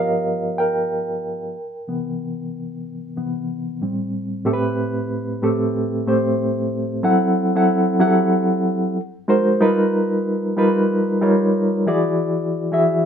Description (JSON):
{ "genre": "R&B", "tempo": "93 BPM", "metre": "4/4", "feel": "swing 63% on 16ths", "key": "A dorian", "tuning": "A4 = 441 Hz", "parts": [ { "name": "mellow reed electric piano", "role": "solo", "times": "0.0-13.1 s", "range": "G2 to G5", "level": "-18 LUFS", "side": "equal", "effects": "fast tremolo" } ], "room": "moderate studio reverb, RT60 0.7 s", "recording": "band playing live in one room", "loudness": "-18 LUFS", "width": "side -8 dB against mid", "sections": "0.0-4.4 A section; 4.4-13.1 B section", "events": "reed electric piano solo 0.0-4.4", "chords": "0.0 G7alt; 1.5 Cmaj7; 3.8 Am7; 4.4 Am9; 7.0 F#m7b5; 9.0 G#9; 9.6 G7alt; 11.9 E7", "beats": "0.57 1.22 | 1.86 2.51 3.15 3.80 | 4.45 5.09 5.74 6.38 | 7.03 7.67 8.32 8.96 | 9.61 10.25 10.90 11.54 | 12.19 12.83" }